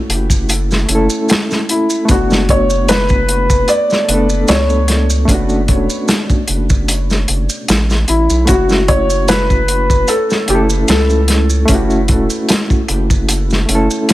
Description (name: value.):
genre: trip hop.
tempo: 75 BPM.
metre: 4/4.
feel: swing 54% on 16ths.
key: F# minor.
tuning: A4 = 440 Hz.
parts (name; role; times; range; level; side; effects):
overdriven reed electric piano; accompaniment; 0.0-14.1 s; A3 to A4; -18 LUFS; equal; tremolo, tape echo.
round analog bass; bass; 0.1-13.9 s; E1 to C#2; -16 LUFS; equal; none.
crunchy breakbeat drum kit; drums; 0.1-14.1 s; hi-hat, kick drum, snare drum; -14 LUFS; equal; none.
maracas; percussion; 0.3-14.1 s; none; -25 LUFS; right 3 dB; none.
felt-muted upright piano; melody; 1.7-11.5 s; E4 to D5; -17 LUFS; left 1 dB; dub echo.
room: light reverb, small room ambience.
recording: none.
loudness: -11 LUFS.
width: side -16 dB against mid.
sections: 0.0-14.1 A section.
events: none.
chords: 0.0 F#m7; 2.1 Bm9/F#; 8.5 F#m7.